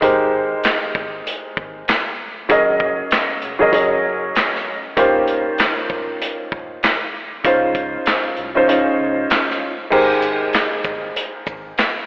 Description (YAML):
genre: hip hop, boom-bap hip-hop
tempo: 97 BPM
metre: 4/4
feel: swing 61% on 16ths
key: Ab major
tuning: A4 = 440 Hz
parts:
  - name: dark grand piano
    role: accompaniment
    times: 0.0-11.9 s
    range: Db3 to Eb5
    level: -17 LUFS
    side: equal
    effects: cassette tape, high-pass filter, low-pass filter
  - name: sub bass with octave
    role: bass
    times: 0.0-11.7 s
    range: Eb1 to Db2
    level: -42 LUFS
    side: equal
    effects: none
  - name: crunchy breakbeat drum kit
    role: drums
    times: 0.0-12.0 s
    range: crash cymbal, handclaps, hi-hat, kick drum, shaker, snare drum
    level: -20 LUFS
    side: equal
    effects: none
room: wet lush hall reverb, RT60 3.0 s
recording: dreamy mix soaked in reverb, vinyl crackle, telephone sound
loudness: -16 LUFS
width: side -26 dB against mid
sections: 0.0-9.9 A section; 9.9-12.1 A section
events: kick muted 8.7-9.9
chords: 0.0 Abmaj7; 2.5 Gb6; 5.0 Eb13; 7.4 Dbmaj9; 9.9 Abmaj7